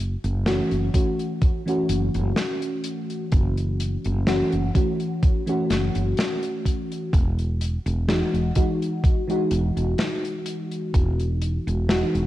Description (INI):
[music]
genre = vaporwave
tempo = 63 BPM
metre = 4/4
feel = swing 54% on 16ths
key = unclear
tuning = A4 = 441 Hz
[part]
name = woody fretless electric bass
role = bass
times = 0.0-12.3 s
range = E1 to F#1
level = -24 LUFS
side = equal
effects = none
[part]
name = modern studio drum kit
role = drums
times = 0.2-12.3 s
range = hi-hat, snare drum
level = -28 LUFS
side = left 1 dB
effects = gated reverb
[part]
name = mellow FM electric piano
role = accompaniment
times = 0.5-12.3 s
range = E3 to F#4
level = -25 LUFS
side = equal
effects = ensemble chorus, tape echo
[part]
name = electronic kick drum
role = drums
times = 0.9-11.1 s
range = none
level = -20 LUFS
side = equal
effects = none
[sound]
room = small room ambience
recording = cassette tape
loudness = -21 LUFS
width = side -15 dB against mid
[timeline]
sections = 0.0-12.3 A section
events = none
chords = 0.0 F#m7; 7.1 Emaj9